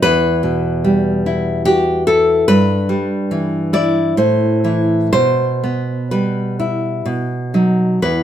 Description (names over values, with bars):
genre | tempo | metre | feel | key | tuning
romantic piece for solo classical guitar | 60-74 BPM | 3/4 | rubato | E minor | A4 = 440 Hz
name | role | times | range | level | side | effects
nylon-string guitar | solo | 0.0-8.2 s | E2 to D5 | -14 LUFS | equal | none
room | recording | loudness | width
wet studio reverb, RT60 0.8 s | band playing live in one room | -14 LUFS | side -10 dB against mid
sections
0.0-8.0 A section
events
none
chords
0.0 Em; 2.5 Em/G; 4.2 Am; 5.1 Em/B; 7.1 B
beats
| 0.04 0.86 1.68 | 2.50 3.32 4.19 | 5.14 6.12 7.06 | 8.03